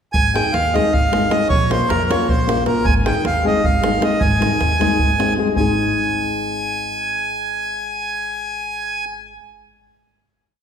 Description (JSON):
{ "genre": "balkan folk, Balkan wedding band", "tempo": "309 BPM (eighths)", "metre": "7/8", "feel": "straight", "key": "Ab major", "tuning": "A4 = 442 Hz", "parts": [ { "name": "accordion", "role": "melody", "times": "0.1-9.1 s", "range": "Bb4 to Ab5", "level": "-20 LUFS", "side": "right 2 dB", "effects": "none" }, { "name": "upright bass", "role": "bass", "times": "0.1-9.4 s", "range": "Ab1 to F2", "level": "-23 LUFS", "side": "equal", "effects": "none" }, { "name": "davul", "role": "percussion", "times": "0.1-5.8 s", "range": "none", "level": "-21 LUFS", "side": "right 1 dB", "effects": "none" }, { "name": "nylon-string guitar", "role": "accompaniment", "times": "0.3-9.4 s", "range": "Ab3 to Bb4", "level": "-21 LUFS", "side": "left 4 dB", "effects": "none" } ], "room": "wet recital hall reverb, RT60 1.7 s", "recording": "recorded in a church or concert hall", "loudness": "-16 LUFS", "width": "side -8 dB against mid", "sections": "0.1-5.6 A section; 5.6-8.3 final chord", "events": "none", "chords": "0.1 Ab; 1.5 Bbm; 2.9 Ab" }